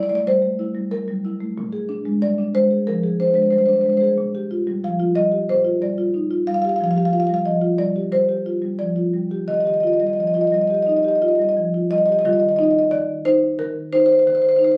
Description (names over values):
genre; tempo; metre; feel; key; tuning
classical, contemporary piece for solo marimba; 91 BPM; 4/4; straight; Eb major; A4 = 439 Hz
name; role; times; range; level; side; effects
marimba with soft mallets; solo; 0.0-14.8 s; Bb2 to F5; -19 LUFS; equal; none
room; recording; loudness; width
light reverb; recorded on a phone in the room, club reverb, compression; -19 LUFS; mono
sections
0.0-12.3 A section; 12.3-14.8 A section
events
none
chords
0.0 C69; 1.6 Bb13; 4.2 Gm7/Bb; 6.8 Fsus2; 9.5 Ebadd9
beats
0.27 0.92 | 1.57 2.23 2.88 3.53 | 4.19 4.84 5.50 6.16 | 6.81 7.47 8.12 8.79 | 9.48 10.17 10.87 11.57 | 12.26 12.93 13.59 14.26